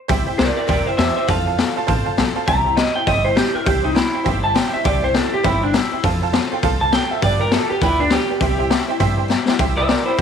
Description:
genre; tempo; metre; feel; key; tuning
rockabilly; 202 BPM; 4/4; swing 62% on 8ths; C major; A4 = 441 Hz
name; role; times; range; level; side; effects
honky-tonk upright piano; accompaniment; 0.1-10.2 s; B4 to A5; -25 LUFS; right 13 dB; none
picked acoustic archtop guitar; accompaniment; 0.1-10.2 s; G2 to A4; -27 LUFS; left 11 dB; none
upright bass; bass; 0.1-10.2 s; G1 to G2; -23 LUFS; right 2 dB; none
raw garage drum kit; drums; 0.1-10.2 s; hi-hat, kick drum, snare drum; -20 LUFS; left 4 dB; none
electric guitar through a small old amp; melody; 0.4-10.2 s; D4 to Bb5; -20 LUFS; right 1 dB; tape echo
room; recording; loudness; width
light reverb, studio ambience; 1960s-style stereo with parts hard left and right; -16 LUFS; side -7 dB against mid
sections
0.1-9.6 A section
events
clean electric guitar solo 0.1-10.2; drum fill 9.3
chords
0.1 C; 1.3 F; 2.5 C; 6.0 F; 7.2 G7; 8.4 C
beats
| 0.10 0.39 0.69 0.99 | 1.28 1.58 1.88 2.18 | 2.47 2.77 3.07 3.37 | 3.66 3.96 4.26 4.55 | 4.85 5.15 5.44 5.74 | 6.04 6.33 6.63 6.93 | 7.22 7.52 7.82 8.11 | 8.41 8.71 9.00 9.30 | 9.60 9.89 10.19

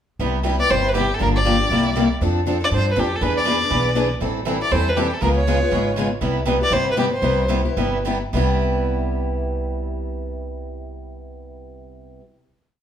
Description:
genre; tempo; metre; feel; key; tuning
acoustic string swing (jazz manouche); 203-241 BPM; 4/4; swing 56% on 8ths; C major; A4 = 440 Hz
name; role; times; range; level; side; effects
picked steel-string acoustic guitar; accompaniment; 0.2-12.2 s; C3 to A4; -23 LUFS; left 5 dB; none
picked steel-string acoustic guitar; accompaniment; 0.2-12.2 s; C3 to B4; -25 LUFS; right 4 dB; none
upright bass; bass; 0.2-12.2 s; G1 to G2; -24 LUFS; right 1 dB; none
warm violin; melody; 0.6-7.5 s; G4 to D5; -21 LUFS; equal; none
room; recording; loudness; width
moderate large studio reverb, RT60 0.8 s; band playing live in one room; -18 LUFS; side -9 dB against mid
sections
0.2-8.3 A section; 8.3-10.7 final chord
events
slowing down 6.2-8.3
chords
0.2 Cmaj7; 1.2 Gm7; 1.7 C7; 2.2 F6; 3.2 E7; 4.2 Am7; 5.2 Db7; 6.2 Cmaj7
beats
| 0.20 0.45 0.70 0.95 | 1.20 1.46 1.71 1.96 | 2.21 2.46 2.71 2.96 | 3.21 3.47 3.72 3.97 | 4.22 4.47 4.72 4.97 | 5.22 5.47 5.71 5.96 | 6.21 6.46 6.72 6.97 | 7.23 7.50 7.77 8.05 | 8.34 8.63 8.93 9.22 | 9.52 9.81 10.11 10.40

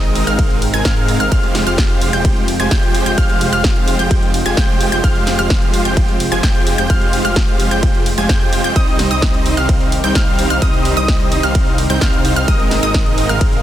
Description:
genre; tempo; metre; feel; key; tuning
EDM, festival progressive house; 129 BPM; 4/4; straight; F minor; A4 = 443 Hz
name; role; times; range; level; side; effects
lush unison pad; sustained chords; 0.0-13.6 s; C3 to G4; -23 LUFS; equal; chorus, sidechain pumping
wide unison pluck; arpeggios; 0.0-13.6 s; Eb6 to Ab6; -21 LUFS; equal; sidechain pumping, digital delay
supersaw chords; riff; 0.0-13.6 s; G3 to Ab5; -19 LUFS; right 1 dB; sidechain pumping, digital delay
wide detuned saw bass; bass; 0.0-13.6 s; F1 to Ab2; -21 LUFS; equal; chorus, sidechain pumping
big-room dance drum kit; drums; 0.0-13.6 s; hi-hat, ride cymbal, snare drum; -23 LUFS; equal; none
electronic kick drum; drums; 0.4-13.5 s; none; -16 LUFS; equal; none
room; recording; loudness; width
little or no reverb; dense, heavily limited modern master; -12 LUFS; side -12 dB against mid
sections
0.0-13.6 A section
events
none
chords
0.0 Abadd9; 1.3 Fmadd9; 8.8 Cm; 12.5 Abadd9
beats
0.39 0.85 | 1.32 1.78 2.25 2.71 | 3.18 3.64 4.11 4.57 | 5.04 5.50 5.97 6.43 | 6.90 7.36 7.83 8.29 | 8.76 9.22 9.69 10.15 | 10.62 11.09 11.55 12.02 | 12.48 12.95 13.41

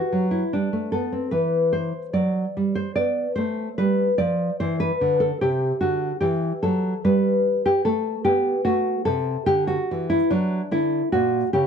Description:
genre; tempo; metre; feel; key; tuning
classical, baroque-style dance for nylon-string guitar; 74 BPM; 3/4; rubato; G major, E minor from 6.2 s; A4 = 441 Hz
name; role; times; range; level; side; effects
nylon-string guitar; solo; 0.0-11.7 s; A#2 to D5; -20 LUFS; equal; none
room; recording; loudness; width
light reverb; dark, warm production; -20 LUFS; side -7 dB against mid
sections
0.0-11.7 A section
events
none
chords
0.0 N.C.; 0.5 G; 1.3 Em11; 3.8 G5; 5.4 C5; 6.2 Emadd11 (rootless); 8.7 F#m7b5; 11.1 A#m6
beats
0.54 | 1.35 2.16 2.98 | 3.80 4.62 5.43 | 6.23 7.04 7.85 | 8.66 9.48 10.30 | 11.12

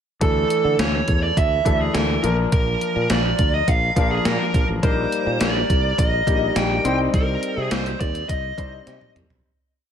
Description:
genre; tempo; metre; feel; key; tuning
1980s-style pop; 104 BPM; 4/4; straight; unclear; A4 = 440 Hz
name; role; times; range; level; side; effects
smooth overdriven lead guitar; melody; 0.2-9.1 s; Ab4 to G5; -23 LUFS; right 3 dB; none
clear grand piano; accompaniment; 0.2-9.5 s; E3 to C5; -25 LUFS; left 4 dB; none
sustaining fretless electric bass; bass; 0.2-9.4 s; A1 to D3; -24 LUFS; equal; none
gated 80s digital drum machine; drums; 0.2-9.4 s; hi-hat, kick drum, snare drum, toms; -22 LUFS; equal; gated reverb, gated reverb snare
room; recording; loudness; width
light reverb; none; -18 LUFS; side -8 dB against mid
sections
0.2-9.4 verse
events
fade-out 7.1-9.4; drum fill 8.9-9.4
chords
0.2 Dsus2; 2.2 Bb; 4.8 Eb/Bb; 6.9 Cm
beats
| 0.22 0.79 1.37 1.95 | 2.52 3.10 3.68 4.25 | 4.83 5.41 5.99 6.56 | 7.14 7.72 8.29 8.87

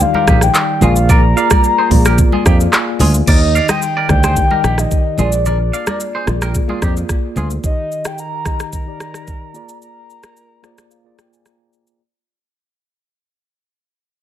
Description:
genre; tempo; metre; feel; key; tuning
afrobeats; 110 BPM; 4/4; straight; Bb mixolydian; A4 = 440 Hz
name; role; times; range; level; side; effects
soft octave-layered synth lead; melody; 0.0-11.4 s; D5 to Bb5; -19 LUFS; left 2 dB; chorus, phaser
mellow tine electric piano; accompaniment; 0.0-12.0 s; Eb3 to Bb5; -22 LUFS; left 1 dB; medium stereo tremolo
fingered electric bass; bass; 0.0-7.6 s; Bb1 to F2; -14 LUFS; equal; none
afro-pop drum kit; drums; 0.0-12.0 s; crash cymbal, handclaps, hi-hat, kick drum, rim click, shaker; -15 LUFS; equal; none
congas; percussion; 0.0-7.5 s; none; -23 LUFS; left 1 dB; none
twangy electric guitar; riff; 0.1-7.5 s; Eb4 to F5; -22 LUFS; right 4 dB; lush chorus, ping-pong delay
room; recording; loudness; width
digital ambience; none; -12 LUFS; side -11 dB against mid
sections
0.0-3.3 A section; 3.3-12.0 B section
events
tine electric piano fill 2.2-3.3, 10.4-12.0; fade-out 3.3-12.0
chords
0.0 Bb7; 7.6 Ebmaj7; 9.5 Bb7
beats
0.00 0.55 | 1.09 1.64 2.18 2.73 | 3.27 3.82 4.37 4.91 | 5.46 6.00 6.55 7.09 | 7.64 8.18 8.73 9.27 | 9.82 10.37 10.91 11.46

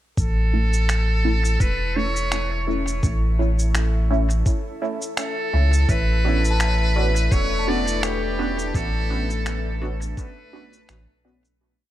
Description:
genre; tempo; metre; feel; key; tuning
ambient dub; 84 BPM; 4/4; swing 56% on 16ths; A major; A4 = 443 Hz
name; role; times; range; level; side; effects
trumpet with metal mute; melody; 0.2-11.2 s; G4 to D5; -27 LUFS; right 1 dB; dub echo
deep dark ambient pad; sustained chords; 1.6-11.6 s; A3 to E5; -32 LUFS; left 2 dB; chorus, built-in reverb
soft dub sub bass; bass; 0.2-11.1 s; E1 to C#2; -21 LUFS; equal; none
electronic cabasa and finger snaps; drums; 0.2-11.6 s; none; -30 LUFS; equal; studio reverb, dub echo
electronic kick drum; drums; 0.2-10.3 s; none; -22 LUFS; equal; studio reverb
filtered dub chord stab; stabs; 0.5-11.4 s; A3 to F#4; -29 LUFS; right 2 dB; phaser, lush chorus, dub echo
concert harp; arpeggios; 6.3-8.9 s; E4 to A5; -33 LUFS; left 4 dB; dub echo
room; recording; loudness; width
light reverb; none; -19 LUFS; side -13 dB against mid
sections
0.2-11.6 groove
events
fade-in on ambient pad 0.2-11.6; fade-out 7.8-11.6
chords
0.2 A; 5.9 Bmadd9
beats
| 0.17 0.89 1.60 2.32 | 3.03 3.75 4.46 5.17 | 5.89 6.60 7.32 8.03 | 8.75 9.46 10.18 10.89

